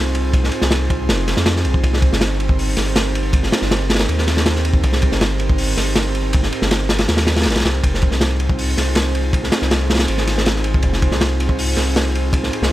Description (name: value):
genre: drum and bass, jungle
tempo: 160 BPM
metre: 4/4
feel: straight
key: F minor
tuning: A4 = 443 Hz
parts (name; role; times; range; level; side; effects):
- airy breathy pad; sustained chords; 0.0-12.7 s; C4 to C5; -23 LUFS; right 2 dB; chorus
- saturated sub bass; bass; 0.0-12.7 s; F1 to F2; -20 LUFS; equal; none
- crunchy breakbeat drum kit; drums; 0.1-12.7 s; hi-hat, kick drum, ride cymbal, snare drum; -17 LUFS; equal; none
room: studio reverb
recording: none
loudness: -15 LUFS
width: side -15 dB against mid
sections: 0.0-12.7 A section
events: none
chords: 0.0 Fm7; 1.8 Cm7; 7.8 Fm7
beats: | 0.34 0.71 1.08 1.46 | 1.83 2.21 2.58 2.96 | 3.33 3.71 4.08 4.46 | 4.83 5.21 5.58 5.96 | 6.33 6.71 7.08 7.46 | 7.83 8.21 8.59 8.96 | 9.34 9.71 10.09 10.46 | 10.84 11.21 11.59 11.96 | 12.34 12.71